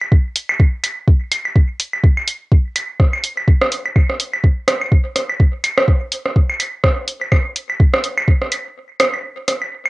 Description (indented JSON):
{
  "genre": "techno",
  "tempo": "125 BPM",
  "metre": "4/4",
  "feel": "swing 57% on 16ths",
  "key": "none",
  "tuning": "none",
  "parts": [
    { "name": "electronic claves, woodblock and rim click", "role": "percussion", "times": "0.0-9.9 s", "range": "none", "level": "-19 LUFS", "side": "right 1 dB", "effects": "cassette tape" },
    { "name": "electronic kick drum", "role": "drums", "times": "0.1-8.4 s", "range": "none", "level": "-12 LUFS", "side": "equal", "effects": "cassette tape" },
    { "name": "electronic hi-hat", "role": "drums", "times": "0.4-9.6 s", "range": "none", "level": "-20 LUFS", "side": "equal", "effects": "cassette tape" }
  ],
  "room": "light reverb",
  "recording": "home recording on cassette",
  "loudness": "-14 LUFS",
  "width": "side -21 dB against mid",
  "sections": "0.0-9.9 A section",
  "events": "break 8.8-9.9",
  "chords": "none",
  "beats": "0.12 0.60 | 1.08 1.56 2.04 2.52 | 3.00 3.48 3.96 4.44 | 4.92 5.40 5.88 6.36 | 6.84 7.32 7.80 8.28 | 8.76 9.24 9.72"
}